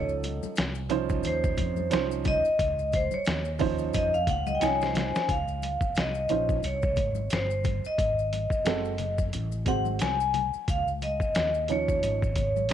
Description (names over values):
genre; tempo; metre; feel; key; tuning
hip hop, jazz-hop; 89 BPM; 4/4; swing 58% on 16ths; Db major; A4 = 442 Hz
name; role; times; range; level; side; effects
vibraphone with medium hard mallets; melody; 0.0-12.7 s; C5 to Ab5; -28 LUFS; left 1 dB; none
dark baby grand piano; accompaniment; 0.0-12.7 s; F3 to Eb5; -31 LUFS; right 12 dB; none
mellow fretless electric bass; bass; 0.0-12.7 s; Gb1 to F2; -32 LUFS; left 1 dB; ensemble chorus
maracas and congas; percussion; 0.1-12.7 s; none; -40 LUFS; left 14 dB; none
trip hop sampler-style drum kit; drums; 0.2-12.7 s; hi-hat, kick drum, snare drum; -30 LUFS; left 1 dB; none
room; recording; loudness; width
light reverb, studio ambience; 1960s-style stereo with parts hard left and right; -25 LUFS; side -10 dB against mid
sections
0.0-5.3 A section; 5.3-12.7 B section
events
vibraphone solo 0.0-5.3; drum fill 4.6-5.3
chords
0.0 Dbmaj9; 8.0 Ab7b9; 10.7 Dbadd9